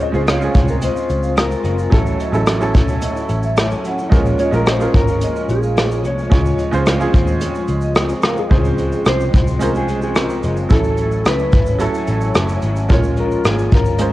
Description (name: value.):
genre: indie pop, bedroom pop.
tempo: 109 BPM.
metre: 4/4.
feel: straight.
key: Db major.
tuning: A4 = 440 Hz.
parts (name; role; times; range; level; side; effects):
mellow electric guitar; melody; 0.0-14.1 s; Ab4 to Eb5; -23 LUFS; left 1 dB; wide subtle chorus.
vibraphone with medium hard mallets; second line; 0.0-8.4 s; C5 to F#5; -28 LUFS; right 3 dB; wide subtle chorus, cassette tape, tape echo.
bright upright piano; accompaniment; 0.0-14.1 s; F#3 to Db5; -22 LUFS; right 3 dB; cassette tape.
electric guitar through a small old amp; accompaniment; 0.0-14.1 s; A2 to F4; -23 LUFS; left 3 dB; ensemble chorus, warbly pitch drift, cassette tape.
vintage muted picked electric bass; bass; 0.1-14.1 s; Gb1 to Eb2; -20 LUFS; equal; none.
soft brush drum kit; drums; 0.1-14.1 s; hi-hat, kick drum, rim click, shaker; -16 LUFS; equal; cassette tape.
room: small room ambience.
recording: home recording on cassette.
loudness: -14 LUFS.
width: side -16 dB against mid.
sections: 0.0-8.5 A section; 8.5-14.1 B section.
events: none.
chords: 0.0 Dbmaj7; 1.9 A6; 4.1 Bbm7; 6.3 Dbmaj7; 10.7 A6; 12.9 Bbm7.